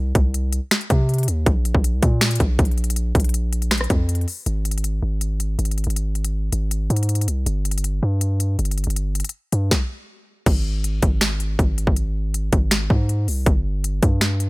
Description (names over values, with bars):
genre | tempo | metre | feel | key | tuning
hip hop, trap | 160 BPM | 4/4 | half-time | unclear | A4 = 439 Hz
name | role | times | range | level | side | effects
long sustained 808-style bass | bass | 0.0-14.5 s | G1 to C3 | -21 LUFS | equal | none
trap drum kit | drums | 0.2-14.5 s | crash cymbal, finger snaps, hi-hat, kick drum, rim click, snare drum | -20 LUFS | equal | none
room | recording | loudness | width
little or no reverb | none | -18 LUFS | side -23 dB against mid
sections
0.0-4.5 A section; 4.5-10.5 B section; 10.5-14.5 C section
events
none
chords
none